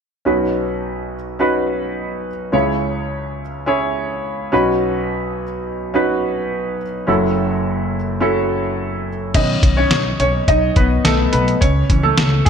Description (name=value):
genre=piano-driven pop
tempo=106 BPM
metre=4/4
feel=straight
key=B mixolydian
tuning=A4 = 440 Hz
part: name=clear concert grand piano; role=accompaniment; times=0.3-12.5 s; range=F#1 to D#5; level=-17 LUFS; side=equal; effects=lush chorus
part: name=upright bass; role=bass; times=9.3-12.5 s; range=B1 to C#2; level=-18 LUFS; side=equal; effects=none
part: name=lo-fi sampler-style drum kit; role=drums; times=9.3-12.5 s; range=crash cymbal, hi-hat, kick drum, snare drum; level=-16 LUFS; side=equal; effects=gated reverb
room=moderate plate reverb, RT60 2.4 s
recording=bright 1980s-style digital production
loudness=-16 LUFS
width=side -7 dB against mid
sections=0.3-9.3 A section; 9.3-12.5 B section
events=grand piano solo 9.3-12.5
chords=0.3 Badd9; 2.5 C#m; 4.5 Badd9; 7.1 F#m7; 9.3 Badd9; 11.6 C#m